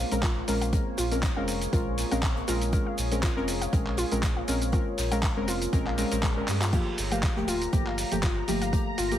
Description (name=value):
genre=deep house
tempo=120 BPM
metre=4/4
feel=swing 55% on 16ths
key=unclear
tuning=A4 = 440 Hz
part: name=deep dark ambient pad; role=sustained chords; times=0.0-9.2 s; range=A3 to F5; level=-37 LUFS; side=equal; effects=chorus, built-in reverb, sidechain pumping
part: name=sub bass with octave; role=bass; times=0.0-9.2 s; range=D1 to G2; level=-32 LUFS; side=equal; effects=sidechain pumping
part: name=deep mellow chord stab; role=stabs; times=0.1-9.2 s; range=F3 to Bb4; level=-31 LUFS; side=left 1 dB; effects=chorus, sidechain pumping, ping-pong delay
part: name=dusty soul sampler-style drum kit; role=drums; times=0.1-9.2 s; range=crash cymbal, handclaps, hi-hat, shaker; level=-33 LUFS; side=equal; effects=studio reverb
part: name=warbly dusty pluck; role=arpeggios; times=0.2-9.0 s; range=F4 to F5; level=-35 LUFS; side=left 1 dB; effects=chorus, sidechain pumping, tape echo
part: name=electronic kick drum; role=drums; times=0.2-8.8 s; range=none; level=-27 LUFS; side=equal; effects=studio reverb
part: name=unplugged drum kit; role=drums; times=0.2-9.2 s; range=hi-hat, snare drum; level=-44 LUFS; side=left 4 dB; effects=none
part: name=swell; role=sound effects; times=6.0-6.7 s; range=none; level=-39 LUFS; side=left 3 dB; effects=none
part: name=soft string machine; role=texture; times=7.0-9.2 s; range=Bb5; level=-38 LUFS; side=right 1 dB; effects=phaser, ensemble chorus, sidechain pumping
room=digital ambience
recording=heavily compressed radio sound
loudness=-24 LUFS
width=side -11 dB against mid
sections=0.0-9.2 A section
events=swell 6.0-6.7; drum fill 6.5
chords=0.0 Bbm9; 6.7 Gm9